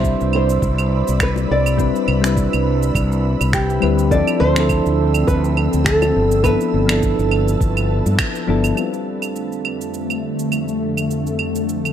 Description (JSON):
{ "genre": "sunset chillout", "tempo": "103 BPM", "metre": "4/4", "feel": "swing 55% on 16ths", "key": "C major", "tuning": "A4 = 440 Hz", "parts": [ { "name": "nylon-string guitar", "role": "melody", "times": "0.0-8.1 s", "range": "G4 to E5", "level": "-22 LUFS", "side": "right 1 dB", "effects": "analog delay, shimmer reverb" }, { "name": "soft electric-piano-like synth keys", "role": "accompaniment", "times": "0.0-11.9 s", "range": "F3 to C5", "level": "-21 LUFS", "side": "moving between left 7 dB and right 6 dB", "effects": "chorus, auto-pan, low-pass filter, analog delay, shimmer reverb" }, { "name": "ethereal airy pad", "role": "sustained chords", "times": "0.0-11.9 s", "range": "F2 to E6", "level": "-26 LUFS", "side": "left 1 dB", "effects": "ensemble chorus, built-in reverb" }, { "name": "fretless electric bass", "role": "bass", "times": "0.0-8.7 s", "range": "G1 to G2", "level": "-18 LUFS", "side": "equal", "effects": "none" }, { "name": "electronic cabasa, claves and finger snaps", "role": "drums", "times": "0.0-11.9 s", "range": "none", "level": "-24 LUFS", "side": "right 4 dB", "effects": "studio reverb" }, { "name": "electronic kick drum", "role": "drums", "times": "0.0-8.3 s", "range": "none", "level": "-21 LUFS", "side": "equal", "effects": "studio reverb" }, { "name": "bongos", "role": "percussion", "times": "1.1-8.2 s", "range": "none", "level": "-30 LUFS", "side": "left 7 dB", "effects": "none" } ], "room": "light reverb, digital ambience", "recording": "dry, gritty hardware recording", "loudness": "-15 LUFS", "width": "side -10 dB against mid", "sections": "0.0-8.8 A section; 8.8-11.9 B section", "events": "band accent 8.2", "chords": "0.0 Cmaj9; 4.1 Dm9; 6.4 G13; 8.8 F6", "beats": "0.04 0.62 1.20 | 1.79 2.37 2.95 3.53 | 4.12 4.70 5.28 5.86 | 6.45 7.03 7.61 8.19 | 8.78 9.36 9.94 10.53 | 11.11 11.69" }